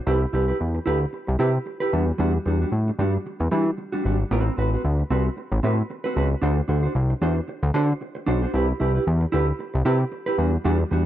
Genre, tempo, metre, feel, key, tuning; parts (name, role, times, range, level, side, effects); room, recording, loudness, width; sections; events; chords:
disco; 114 BPM; 4/4; swing 56% on 16ths; A dorian; A4 = 439 Hz
mellow electric guitar; accompaniment; 0.1-11.0 s; G3 to C5; -25 LUFS; right 2 dB; spring reverb
fat analog bass; bass; 0.1-11.1 s; G#1 to E3; -21 LUFS; equal
light reverb; -21 LUFS; side -12 dB against mid
0.0-4.3 A section; 4.3-11.1 B section
0.1 Cmaj7; 1.9 Em9; 4.3 Am69; 6.4 D7; 8.5 Cmaj7; 10.4 Em9